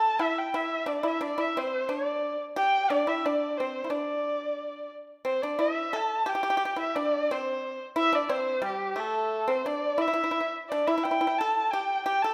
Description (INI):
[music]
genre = chinese traditional, Chinese chamber ensemble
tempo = 88 BPM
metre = 2/4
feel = straight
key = D shang mode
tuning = A4 = 440 Hz
[part]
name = warm erhu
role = melody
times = 0.0-12.3 s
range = G4 to A5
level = -29 LUFS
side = equal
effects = none
[part]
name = pipa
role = second line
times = 0.0-12.3 s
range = G3 to A4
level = -33 LUFS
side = equal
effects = none
[sound]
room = moderate scoring stage reverb, RT60 1.7 s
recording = none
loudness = -28 LUFS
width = mono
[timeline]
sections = 0.0-5.3 A section; 5.3-12.3 B section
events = none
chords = none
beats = 0.53 | 1.21 1.89 | 2.56 3.23 | 3.90 4.58 | 5.26 5.95 | 6.63 7.30 | 7.98 8.65 | 9.33 10.01 | 10.70 11.39 | 12.07